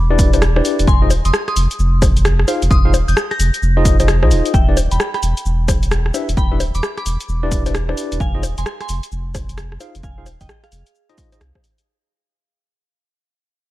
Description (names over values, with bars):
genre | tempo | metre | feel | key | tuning
UK garage, two-step garage | 131 BPM | 4/4 | swing 63% on 16ths | unclear | A4 = 439 Hz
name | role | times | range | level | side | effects
soft synth bell | melody | 0.0-11.8 s | Ab4 to A#6 | -27 LUFS | left 1 dB | chorus, phaser, dub echo
saturated sub bass | bass | 0.0-11.5 s | D1 to C2 | -16 LUFS | equal | none
tine electric piano | stabs | 0.1-11.4 s | D4 to F5 | -22 LUFS | left 2 dB | fast stereo tremolo, tape echo
electronic kick drum | drums | 0.2-11.6 s | none | -16 LUFS | equal | none
punchy analog drum machine | drums | 0.2-11.9 s | bongos, hi-hat, rim click, shaker | -22 LUFS | left 2 dB | none
room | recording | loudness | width
little or no reverb | dark, warm production | -14 LUFS | side -16 dB against mid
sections
0.0-11.9 A section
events
drop 0.0-11.9; fade-out 4.5-11.9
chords
0.0 Em7; 0.9 Fm7; 4.5 Em7; 8.2 Fm7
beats
0.42 | 0.88 1.33 1.79 2.25 | 2.71 3.17 3.62 4.08 | 4.54 5.00 5.46 5.91 | 6.37 6.83 7.29 7.75 | 8.20 8.66 9.12 9.58 | 10.04 10.49 10.95 11.41